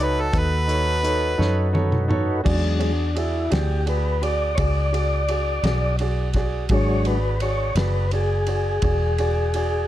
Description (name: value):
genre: slow blues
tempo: 56 BPM (dotted quarters)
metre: 12/8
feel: straight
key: E mixolydian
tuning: A4 = 441 Hz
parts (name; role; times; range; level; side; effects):
- clear harmonica; melody; 0.0-1.7 s; A4 to B4; -24 LUFS; equal; overdrive
- clear concert grand piano; accompaniment; 0.0-9.8 s; D#4 to D5; -28 LUFS; right 4 dB; none
- tonewheel organ; sustained chords; 0.0-9.9 s; F#3 to D5; -25 LUFS; left 2 dB; slow rotary speaker
- vintage muted fingered electric bass; bass; 0.0-9.9 s; E1 to F#2; -23 LUFS; equal; none
- warm soul drum kit; drums; 0.3-9.7 s; crash cymbal, hi-hat, kick drum, ride cymbal, snare drum, toms; -28 LUFS; equal; none
room: light reverb, small room ambience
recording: dark, warm production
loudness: -19 LUFS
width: side -13 dB against mid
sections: 0.0-2.5 A section; 2.5-9.9 A section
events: harmonica solo 0.0-2.5; drum fill 1.4-2.5; tonewheel organ solo 2.5-9.9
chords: 0.0 B7; 2.5 E7